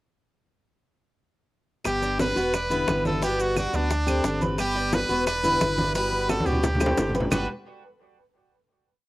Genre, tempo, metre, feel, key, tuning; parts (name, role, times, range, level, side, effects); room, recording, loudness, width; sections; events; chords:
latin, Cuban son and guajira; 176 BPM; 4/4; straight; G major; A4 = 443 Hz
picked steel-string acoustic guitar; accompaniment; 1.8-7.5 s; D3 to G4; -28 LUFS; left 1 dB; plate reverb
claves; percussion; 1.8-7.4 s; -34 LUFS; right 6 dB
brilliant trumpet; melody; 1.9-7.5 s; D4 to B4; -27 LUFS; right 1 dB; cassette tape
sub bass with octave; bass; 1.9-7.5 s; E1 to D2; -30 LUFS; equal
bongos; percussion; 1.9-7.4 s; -30 LUFS; left 3 dB
congas; percussion; 1.9-7.4 s; -29 LUFS; equal
maracas; percussion; 1.9-7.4 s; -40 LUFS; right 6 dB
Cuban tres; arpeggios; 2.0-7.5 s; G3 to D5; -31 LUFS; equal; plate reverb, analog delay
wet booth ambience, RT60 0.2 s; home recording on cassette; -22 LUFS; side -18 dB against mid
1.9-7.3 montuno (vamp); 7.3-8.7 final chord
drum fill 6.3-7.3
1.9 Gmaj7; 2.5 Em7; 3.2 Gmaj7; 3.9 D7sus4; 4.6 Gmaj7; 5.3 Em7; 6.0 Gmaj7; 6.6 D7sus4; 7.3 Gmaj7(no3)